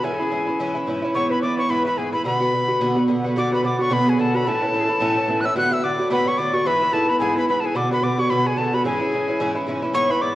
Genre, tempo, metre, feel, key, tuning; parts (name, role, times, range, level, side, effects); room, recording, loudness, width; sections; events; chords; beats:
celtic folk, Celtic reel; 219 BPM; 4/4; swing 58% on 8ths; B dorian; A4 = 440 Hz
reedy mid whistle; melody; 0.0-10.3 s; G#5 to F#6; -23 LUFS; equal
bright wooden flute; second line; 0.0-10.3 s; G#4 to F#5; -27 LUFS; left 2 dB
Irish bouzouki; accompaniment; 0.0-10.3 s; G#2 to F#4; -21 LUFS; right 1 dB
hammered dulcimer; second line; 3.4-10.3 s; G#4 to F#5; -32 LUFS; right 1 dB
wet recital hall reverb, RT60 1.4 s; worn, warbling old tape, cassette tape, warbly pitch drift; -18 LUFS; side -15 dB against mid
0.0-3.4 A section; 3.4-10.3 A section
0.0 C#m; 1.2 E; 2.3 Bm; 4.5 A; 5.6 Bm7; 6.7 E; 7.8 Bm; 8.8 C#m
| 0.04 0.32 0.60 0.87 | 1.15 1.43 1.71 1.98 | 2.26 2.54 2.81 3.09 | 3.36 3.64 3.91 4.19 | 4.46 4.74 5.01 5.29 | 5.56 5.83 6.11 6.38 | 6.66 6.93 7.21 7.48 | 7.75 8.03 8.30 8.57 | 8.85 9.12 9.39 9.67 | 9.94 10.22